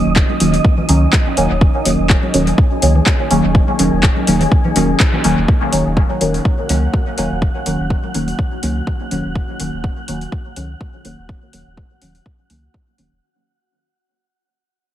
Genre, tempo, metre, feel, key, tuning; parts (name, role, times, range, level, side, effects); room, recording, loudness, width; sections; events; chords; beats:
dub techno; 124 BPM; 4/4; swing 55% on 16ths; Eb minor; A4 = 438 Hz
deep mellow chord stab; stabs; 0.0-13.1 s; Eb3 to Db4; -17 LUFS; equal; chorus, phaser, sidechain pumping, dub echo
wind-like tuned noise texture; texture; 0.0-13.2 s; Eb4 to Gb5; -25 LUFS; equal; built-in reverb, sidechain pumping
warm sub bass; bass; 0.1-13.2 s; Eb1 to Db2; -20 LUFS; equal; tube saturation, sidechain pumping
deep house drum kit; drums; 0.2-13.1 s; handclaps, hi-hat; -21 LUFS; left 1 dB; overdrive, dub echo
electronic kick drum; drums; 0.2-12.8 s; -14 LUFS; equal; overdrive
electronic toms and congas; percussion; 0.3-8.4 s; -26 LUFS; left 1 dB; sidechain pumping on toms, sidechain pumping on perc, dub echo
light reverb; heavily compressed radio sound; -13 LUFS; side -12 dB against mid
0.0-5.5 A section; 5.5-13.2 B section
band accent 5.0; fade-out 5.5-13.2; filter sweep on synth stab 5.5-13.2
0.0 Ebm7
0.16 0.65 1.13 | 1.61 2.10 2.58 3.06 | 3.55 4.03 4.52 5.00 | 5.48 5.97 6.45 6.93 | 7.42 7.90 8.39 8.87 | 9.35 9.84 10.32 10.81 | 11.29 11.77 12.26 12.74